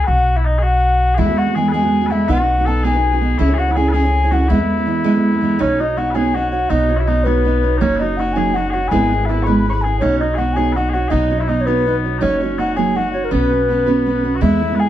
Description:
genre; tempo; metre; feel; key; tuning
celtic folk, Celtic jig; 109 BPM (dotted quarters); 6/8; straight; E major, B major from 5.6 s; A4 = 438 Hz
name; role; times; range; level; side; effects
mellow baroque flute; melody; 0.0-14.9 s; A#4 to B5; -20 LUFS; left 2 dB; none
mellow small bagpipes; second line; 0.0-14.9 s; B3 to C#5; -25 LUFS; left 5 dB; none
upright bass; bass; 0.0-14.9 s; F#1 to E2; -19 LUFS; equal; none
picked steel-string acoustic guitar; accompaniment; 1.2-14.9 s; E3 to C#5; -18 LUFS; right 3 dB; none
room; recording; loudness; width
wet small room ambience, RT60 0.5 s; heard from further back in the room; -14 LUFS; side -12 dB against mid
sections
0.0-5.6 A section; 5.6-14.4 B section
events
none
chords
0.1 B5; 1.2 Eadd9; 2.3 B; 3.4 C#m; 4.5 E; 5.6 Badd9; 7.8 F#6; 8.9 E/G#; 10.0 Badd9; 12.2 F#6; 13.3 Bsus2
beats
| 0.08 0.63 | 1.19 1.74 | 2.29 2.84 | 3.40 3.95 | 4.50 5.05 | 5.60 6.15 | 6.71 7.26 | 7.81 8.36 | 8.91 9.46 | 10.01 10.56 | 11.12 11.67 | 12.22 12.77 | 13.32 13.87 | 14.41

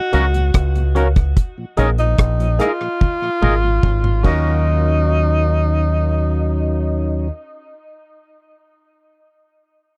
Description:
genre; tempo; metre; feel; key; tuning
lovers rock reggae; 73 BPM; 4/4; straight; Eb minor; A4 = 440 Hz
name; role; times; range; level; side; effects
breathy tenor saxophone; melody; 0.0-7.3 s; Db4 to Gb4; -25 LUFS; equal; tape echo
FM electric piano with tremolo; accompaniment; 0.1-7.3 s; Gb4 to F5; -29 LUFS; equal; none
mellow tonewheel organ; accompaniment; 0.1-7.3 s; Eb2 to Eb4; -28 LUFS; equal; slow rotary speaker
twangy electric guitar; stabs; 0.1-7.8 s; Db4 to Bb4; -26 LUFS; equal; warbly pitch drift
deep dub fingered electric bass; bass; 0.1-7.3 s; Ab1 to Eb2; -19 LUFS; equal; none
deep reggae drum kit; drums; 0.1-4.4 s; crash cymbal, hi-hat, kick drum, rim click, toms; -20 LUFS; equal; none
room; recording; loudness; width
little or no reverb; dry, close 1970s-style studio recording; -17 LUFS; mono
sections
0.0-4.7 A section; 4.7-7.9 B section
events
drum fill 3.0-4.7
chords
0.0 Ebm7; 1.4 Bb7sus4; 4.2 Ebm7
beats
0.54 | 1.37 2.19 3.01 3.83 | 4.66 5.48 6.30 7.12

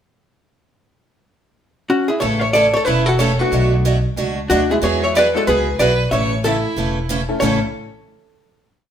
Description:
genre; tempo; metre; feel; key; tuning
country; 185 BPM; 4/4; swing 62% on 8ths; A major; A4 = 442 Hz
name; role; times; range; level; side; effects
archtop guitar, miked and amplified; melody; 1.9-7.6 s; C#4 to E5; -17 LUFS; equal; none
clear fiddle; second line; 2.2-7.6 s; D4 to C#5; -25 LUFS; right 1 dB; none
picked steel-string acoustic guitar; accompaniment; 2.2-7.6 s; A2 to A4; -22 LUFS; right 3 dB; none
upright bass; bass; 2.2-7.6 s; E1 to E2; -21 LUFS; equal; none
bright upright piano; accompaniment; 3.4-7.6 s; E3 to A4; -25 LUFS; left 3 dB; none
room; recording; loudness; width
wet studio reverb, RT60 0.9 s; band playing live in one room; -15 LUFS; side -9 dB against mid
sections
0.9-2.2 pickup bar; 2.2-7.4 A section; 7.4-8.7 final chord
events
none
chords
0.9 N.C.; 2.2 A; 3.5 Bm7; 4.8 Eadd9; 6.1 A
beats
| 0.91 1.24 1.56 1.89 | 2.21 2.54 2.87 3.19 | 3.52 3.84 4.17 4.50 | 4.82 5.14 5.47 5.79 | 6.12 6.44 6.77 7.09 | 7.41

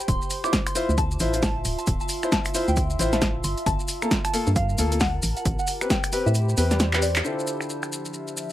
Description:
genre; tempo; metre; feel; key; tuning
UK garage, two-step garage; 134 BPM; 4/4; swing 60% on 16ths; D minor; A4 = 437 Hz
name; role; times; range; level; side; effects
maracas; percussion; 0.0-8.5 s; none; -34 LUFS; left 1 dB; none
warbly tape-like pad; texture; 0.0-8.5 s; F3 to C6; -34 LUFS; right 1 dB; chorus, built-in reverb, sidechain pumping
soft synth bell; melody; 0.1-7.1 s; D5 to D6; -32 LUFS; equal; chorus, phaser, tape echo
organ-like FM bass; bass; 0.1-7.2 s; D1 to A2; -24 LUFS; equal; sidechain pumping
electronic kick drum; drums; 0.1-6.0 s; none; -27 LUFS; equal; overdrive
punchy analog drum machine; drums; 0.1-7.9 s; finger snaps, handclaps, hi-hat, snare drum; -26 LUFS; equal; overdrive, low-pass filter on hats, low-pass filter on snare
warm baby grand piano; stabs; 0.4-8.5 s; D3 to C5; -28 LUFS; left 2 dB; none
room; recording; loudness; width
light reverb; vinyl crackle; -21 LUFS; side -13 dB against mid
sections
0.0-7.2 A section; 7.2-8.5 B section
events
kick drops out 6.4-7.2; drum fill 6.9-7.2; band accent 7.1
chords
0.1 Dm9; 3.4 Gm9; 5.2 Am9; 7.2 Dm9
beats
| 0.08 0.53 0.98 1.43 | 1.87 2.32 2.77 3.22 | 3.67 4.11 4.56 5.01 | 5.46 5.90 6.35 6.80 | 7.25 7.70 8.14

